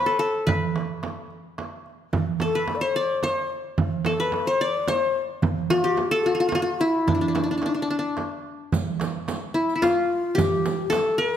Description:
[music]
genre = Arabic maqam ensemble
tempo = 109 BPM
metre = 3/4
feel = straight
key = D maqam rast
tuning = A4 = 439 Hz
[part]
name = qanun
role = melody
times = 0.0-11.4 s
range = D4 to D5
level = -23 LUFS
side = left 1 dB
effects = none
[part]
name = darbuka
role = percussion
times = 0.5-11.1 s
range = none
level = -30 LUFS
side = right 5 dB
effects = none
[part]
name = frame drum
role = percussion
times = 0.5-11.1 s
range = none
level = -29 LUFS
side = right 3 dB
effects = none
[part]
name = breathy low ney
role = second line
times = 2.4-11.4 s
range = D4 to D5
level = -28 LUFS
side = left 5 dB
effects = none
[part]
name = riq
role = percussion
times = 8.7-11.4 s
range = none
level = -36 LUFS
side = right 5 dB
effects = none
[sound]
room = moderate recital hall reverb, RT60 1.7 s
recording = none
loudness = -21 LUFS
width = side -10 dB against mid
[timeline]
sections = 0.0-8.7 A section; 8.7-11.4 B section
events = none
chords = none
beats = | 0.47 1.02 1.57 | 2.13 2.68 3.23 | 3.78 4.33 4.88 | 5.43 5.98 6.53 | 7.08 7.63 8.18 | 8.73 9.28 9.83 | 10.38 10.93

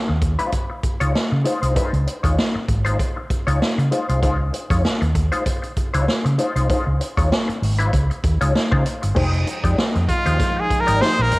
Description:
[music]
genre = funk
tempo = 97 BPM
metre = 4/4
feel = swing 56% on 16ths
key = unclear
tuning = A4 = 440 Hz
[part]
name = mellow electric guitar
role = accompaniment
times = 0.1-11.4 s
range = Ab3 to D5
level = -24 LUFS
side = left 2 dB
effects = wah, cassette tape
[part]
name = vintage muted fingered electric bass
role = bass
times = 0.1-11.4 s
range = F1 to Db3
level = -20 LUFS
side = equal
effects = none
[part]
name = swinging big-band drum kit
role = drums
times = 0.2-11.4 s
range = crash cymbal, hi-hat, kick drum, snare drum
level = -22 LUFS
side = equal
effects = cassette tape
[part]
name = string machine, full ensemble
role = sustained chords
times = 9.2-11.4 s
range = F3 to G5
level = -29 LUFS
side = right 1 dB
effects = phaser, ensemble chorus, cassette tape
[part]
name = brilliant trumpet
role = melody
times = 10.1-11.4 s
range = F4 to C5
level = -19 LUFS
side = equal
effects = cassette tape
[sound]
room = moderate spring reverb, RT60 2.1 s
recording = home recording on cassette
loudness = -17 LUFS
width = side -22 dB against mid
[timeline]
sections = 0.0-9.2 A section; 9.2-11.4 B section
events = trumpet solo 9.2-11.4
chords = 0.0 Dbmaj9; 9.2 Fm9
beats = 0.53 1.15 | 1.76 2.38 3.00 3.61 | 4.23 4.85 5.46 6.08 | 6.70 7.31 7.93 8.55 | 9.16 9.78 10.40 11.01

